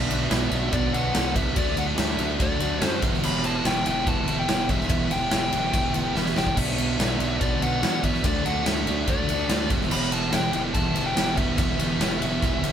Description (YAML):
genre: classic rock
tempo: 144 BPM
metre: 4/4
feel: straight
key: E minor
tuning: A4 = 439 Hz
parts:
  - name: fuzz lead guitar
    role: melody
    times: 0.0-12.7 s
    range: D5 to B5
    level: -29 LUFS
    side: left 2 dB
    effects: distortion
  - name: biting overdriven guitar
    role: riff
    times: 0.0-12.7 s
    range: B2 to E4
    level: -26 LUFS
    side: right 2 dB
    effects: spring reverb
  - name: fuzz fingered electric bass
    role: bass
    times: 0.0-12.7 s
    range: E1 to F#2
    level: -30 LUFS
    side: equal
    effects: overdrive
  - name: big rock drum kit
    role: drums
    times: 0.1-12.7 s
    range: crash cymbal, kick drum, ride cymbal, snare drum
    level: -25 LUFS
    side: equal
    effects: none
room: moderate small room reverb, RT60 0.5 s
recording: band playing live in one room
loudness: -21 LUFS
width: side -9 dB against mid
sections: 0.0-12.7 A section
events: drum fill 6.2-6.6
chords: 0.0 Bm; 1.6 D; 3.0 Em; 6.6 Bm; 8.2 D; 9.7 Em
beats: 0.31 0.72 1.14 | 1.56 1.98 2.40 2.81 | 3.23 3.65 4.07 4.48 | 4.90 5.32 5.74 6.15 | 6.57 6.99 7.40 7.82 | 8.24 8.66 9.07 9.49 | 9.91 10.32 10.74 11.16 | 11.58 11.99 12.41